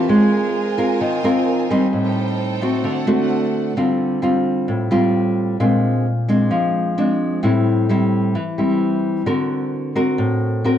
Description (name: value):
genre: bossa nova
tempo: 131 BPM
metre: 4/4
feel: straight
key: D minor from 3.8 s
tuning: A4 = 440 Hz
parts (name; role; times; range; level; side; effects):
- nylon-string guitar; accompaniment; 0.0-10.8 s; A2 to Bb4; -16 LUFS; equal; none
- warm studio violin section; sustained chords; 0.0-3.8 s; D4 to Ab5; -27 LUFS; right 3 dB; none
room: moderate echo chamber reverb, RT60 2.0 s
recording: worn, warbling old tape, cassette tape, warbly pitch drift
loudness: -16 LUFS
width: side -10 dB against mid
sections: 0.0-3.8 A section; 3.8-10.8 B section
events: none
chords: 0.1 Ab69; 1.9 Am7b5; 2.8 D7; 3.8 Dm7; 5.6 Bb9; 7.4 Am7; 9.3 D7b13